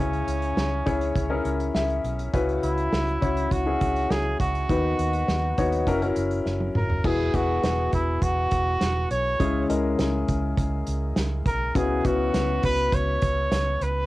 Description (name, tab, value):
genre	piano-driven pop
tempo	102 BPM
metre	4/4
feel	straight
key	unclear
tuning	A4 = 440 Hz
part	clear trumpet	melody	0.0-14.1 s	C#4 to C#5	-27 LUFS	right 1 dB	cassette tape
part	warm upright piano	accompaniment	0.0-14.1 s	C#3 to E5	-26 LUFS	left 3 dB	cassette tape
part	vintage muted fingered electric bass	bass	0.0-14.1 s	E1 to D#2	-28 LUFS	right 1 dB	none
part	unplugged drum kit	drums	0.1-13.9 s	crash cymbal, hi-hat, kick drum, snare drum, toms	-28 LUFS	right 1 dB	cassette tape
room	moderate booth ambience, RT60 0.2 s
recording	home recording on cassette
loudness	-22 LUFS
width	side -18 dB against mid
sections	0.0-7.0 A section; 7.0-14.1 B section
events	upright piano fill 1.5-2.3; drum fill 6.5-7.0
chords	0.0 C#m; 2.3 F#7sus4/C#; 4.7 B/D#; 5.9 F#7; 7.0 Eadd9; 9.4 C#m; 11.8 F#7sus4/C#